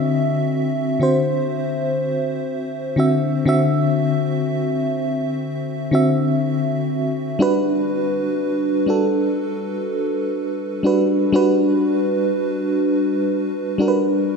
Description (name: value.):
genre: R&B.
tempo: 61 BPM.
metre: 4/4.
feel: swing 58% on 16ths.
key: G major.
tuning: A4 = 442 Hz.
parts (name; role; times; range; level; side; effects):
FM electric piano with soft pad layer; solo; 0.0-14.4 s; D3 to E5; -18 LUFS; equal; chorus, tremolo.
room: wet plate reverb, RT60 3.2 s.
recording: dreamy mix soaked in reverb.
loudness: -18 LUFS.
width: side -5 dB against mid.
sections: 0.0-14.4 A section.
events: none.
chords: 0.0 D9; 7.4 Gmaj7.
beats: 0.52 1.50 2.48 | 3.47 4.45 5.43 6.42 | 7.40 8.38 9.37 10.35 | 11.34 12.32 13.30 14.29.